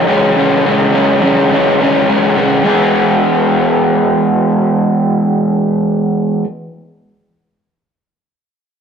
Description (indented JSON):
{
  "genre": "rock",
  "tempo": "105 BPM",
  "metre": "4/4",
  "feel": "straight",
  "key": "E major",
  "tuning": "A4 = 440 Hz",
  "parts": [
    { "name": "crunchy overdriven guitar", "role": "solo", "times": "0.0-6.4 s", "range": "C#3 to G#4", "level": "-10 LUFS", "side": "equal", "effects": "none" }
  ],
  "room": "wet stone room reverb, RT60 1.3 s",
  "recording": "rough rehearsal-room recording",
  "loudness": "-10 LUFS",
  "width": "side -7 dB against mid",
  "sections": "0.0-2.7 A section; 2.7-4.9 B section",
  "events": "none",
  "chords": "0.0 C#m; 2.7 E"
}